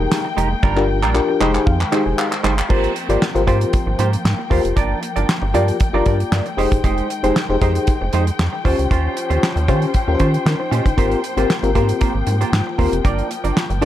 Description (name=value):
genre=early-eighties boogie funk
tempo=116 BPM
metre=4/4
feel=straight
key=unclear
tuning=A4 = 440 Hz
part: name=FM electric piano with tremolo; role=accompaniment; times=0.0-13.8 s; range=Bb3 to Bb5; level=-21 LUFS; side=left 4 dB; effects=none
part: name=dark studio string section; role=sustained chords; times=0.0-13.8 s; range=Eb3 to G5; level=-26 LUFS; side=left 3 dB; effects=none
part: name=semi-hollow electric guitar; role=riff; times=0.0-13.8 s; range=G3 to D5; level=-24 LUFS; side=right 8 dB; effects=lush chorus
part: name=rubbery square bass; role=bass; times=0.0-13.8 s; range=F1 to Eb3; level=-19 LUFS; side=equal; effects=none
part: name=damped 70s drum kit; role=drums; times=0.1-13.8 s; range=crash cymbal, handclaps, hi-hat, kick drum, snare drum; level=-20 LUFS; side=equal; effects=none
room=light reverb, small room ambience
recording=none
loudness=-15 LUFS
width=side -12 dB against mid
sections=0.0-2.7 A section; 2.7-13.8 B section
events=drum fill 0.6-2.7; FM electric piano fill 1.1-2.7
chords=0.0 Fm11; 0.6 Gm7; 1.4 Fm9; 2.7 Abmaj13; 4.8 Gm7; 6.6 Fm9; 8.6 Eb13; 11.0 Abmaj13; 13.0 Gm7